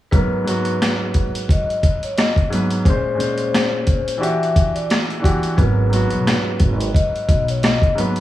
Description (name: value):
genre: hip hop, boom-bap hip-hop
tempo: 88 BPM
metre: 4/4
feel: swing 56% on 16ths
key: unclear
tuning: A4 = 440 Hz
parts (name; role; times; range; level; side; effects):
- vibraphone with soft mallets; melody; 0.1-7.9 s; B4 to E5; -23 LUFS; left 2 dB; high-pass filter, low-pass filter, plate reverb, analog delay
- warm grand piano; accompaniment; 0.1-8.2 s; G#2 to B#4; -22 LUFS; equal; cassette tape, high-pass filter, low-pass filter, plate reverb
- boom bap sampler-style drum kit; drums; 0.1-8.2 s; hi-hat, kick drum, rim click, snare drum; -18 LUFS; equal; none
- upright bass; bass; 5.6-7.7 s; G#1 to B1; -19 LUFS; right 1 dB; none
room: light reverb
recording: vinyl crackle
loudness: -16 LUFS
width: side -14 dB against mid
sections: 0.1-8.2 A section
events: none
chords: 0.1 G#m9; 2.9 A#m9; 4.2 Em9; 5.6 G#m9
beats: | 0.13 0.81 1.49 2.17 | 2.85 3.54 4.22 4.90 | 5.58 6.26 6.94 7.63